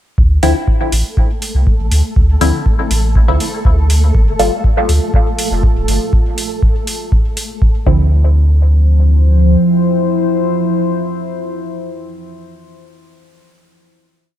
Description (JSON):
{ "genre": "dub techno", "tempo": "121 BPM", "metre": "4/4", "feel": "straight", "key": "D minor", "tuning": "A4 = 440 Hz", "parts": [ { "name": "warm sub bass", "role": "bass", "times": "0.2-9.6 s", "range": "D1 to D2", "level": "-11 LUFS", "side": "equal", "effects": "sidechain pumping" }, { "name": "electronic kick drum", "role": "drums", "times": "0.2-8.0 s", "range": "none", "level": "-13 LUFS", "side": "equal", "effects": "small room ambience" }, { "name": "flickering grainy texture", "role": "texture", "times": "0.9-8.1 s", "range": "A3 to A4", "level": "-26 LUFS", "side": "left 1 dB", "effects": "built-in reverb, wide subtle chorus, sidechain pumping" }, { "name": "filtered dub chord stab", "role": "stabs", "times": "0.4-4.5, 7.9-12.1 s", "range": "D3 to A4", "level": "-18 LUFS", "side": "left 1 dB", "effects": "phaser, sidechain pumping, dub echo" }, { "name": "electronic hi-hat", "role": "drums", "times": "0.4-7.5 s", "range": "none", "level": "-23 LUFS", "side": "right 1 dB", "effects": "small room ambience" }, { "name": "deep dark ambient pad", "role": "sustained chords", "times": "4.9-12.1 s", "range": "F3 to C5", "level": "-17 LUFS", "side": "left 1 dB", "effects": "chorus, built-in reverb, sidechain pumping" } ], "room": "digital ambience", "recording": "none", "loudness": "-11 LUFS", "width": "side -12 dB against mid", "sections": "0.2-8.1 groove; 8.1-12.1 final hit", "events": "none", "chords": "0.2 Dm9; 4.1 G7sus2; 7.9 Dm9" }